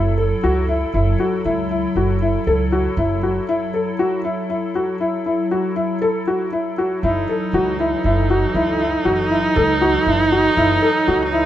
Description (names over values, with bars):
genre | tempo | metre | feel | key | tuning
contemporary instrumental, chamber music in an uneven meter | 118 BPM | 7/4 | straight | F# dorian | A4 = 444 Hz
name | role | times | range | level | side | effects
evolving wavetable pad | sustained chords | 0.0-11.5 s | E3 to A4 | -25 LUFS | left 2 dB | chorus, built-in reverb
felt-muted upright piano | arpeggios | 0.0-11.5 s | E4 to A4 | -20 LUFS | left 2 dB | none
upright bass | bass | 0.0-11.5 s | F#1 to C#2 | -22 LUFS | right 2 dB | none
warm viola | second line | 7.0-11.5 s | D#4 | -19 LUFS | right 2 dB | none
room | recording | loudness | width
light reverb | dark, warm production | -16 LUFS | side -12 dB against mid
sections
0.0-7.0 A section; 7.0-11.5 B section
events
break 3.5-7.0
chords
0.0 F#m7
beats
0.43 0.94 1.45 1.96 2.47 2.98 | 3.48 3.99 4.50 5.01 5.51 6.02 6.53 | 7.03 7.54 8.04 8.55 9.06 9.56 10.06 | 10.57 11.07